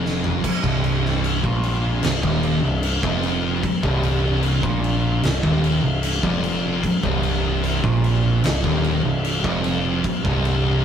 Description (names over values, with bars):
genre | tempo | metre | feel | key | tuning
stoner and doom metal | 75 BPM | 4/4 | straight | C minor | A4 = 440 Hz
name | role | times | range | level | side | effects
thick fuzz guitar | riff | 0.0-10.8 s | C2 to Bb2 | -25 LUFS | left 7 dB | distortion
thick fuzz guitar | riff | 0.0-10.8 s | C2 to Bb2 | -24 LUFS | right 6 dB | distortion
growling picked electric bass | bass | 0.0-10.8 s | C1 to Bb1 | -24 LUFS | equal | overdrive
oversized low-tuned drum kit | drums | 0.1-10.6 s | crash cymbal, kick drum, snare drum, toms | -24 LUFS | equal | none
room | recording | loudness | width
light reverb | rough rehearsal-room recording | -18 LUFS | side -8 dB against mid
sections
0.4-10.8 A section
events
drum fill 0.0-0.4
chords
0.4 Cm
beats
| 0.44 1.24 2.04 2.84 | 3.64 4.44 5.24 6.04 | 6.84 7.64 8.44 9.24 | 10.05